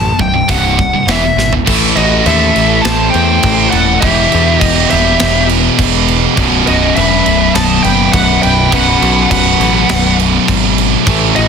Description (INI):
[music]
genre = heavy metal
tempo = 102 BPM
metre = 4/4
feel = straight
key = B phrygian dominant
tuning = A4 = 440 Hz
[part]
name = high-gain lead guitar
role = melody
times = 0.0-11.5 s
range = D#5 to A5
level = -15 LUFS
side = left 2 dB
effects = distortion, tape echo
[part]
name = sludgy distorted guitar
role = riff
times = 0.0-11.5 s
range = B1 to A3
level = -16 LUFS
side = left 13 dB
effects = overdrive
[part]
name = tight distorted guitar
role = riff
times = 0.0-11.5 s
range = B1 to A3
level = -15 LUFS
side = right 14 dB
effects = distortion
[part]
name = modern bright picked electric bass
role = bass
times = 0.0-11.5 s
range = B0 to E2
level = -16 LUFS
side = equal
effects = none
[part]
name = tight metal drum kit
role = drums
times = 0.2-11.5 s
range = crash cymbal, hi-hat, kick drum, snare drum, toms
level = -16 LUFS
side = right 2 dB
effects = soft clipping on kick
[part]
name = high-gain lead guitar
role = second line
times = 2.0-11.5 s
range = F#4 to D#5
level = -21 LUFS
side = right 6 dB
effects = distortion
[sound]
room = studio ambience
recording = dense, heavily limited modern master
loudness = -8 LUFS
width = side -6 dB against mid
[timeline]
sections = 0.0-1.7 A section; 1.7-11.5 B section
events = drum fill 1.4; half time 1.7-11.5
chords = 0.5 C5; 1.1 E5; 1.7 Am; 4.0 Em; 6.4 B5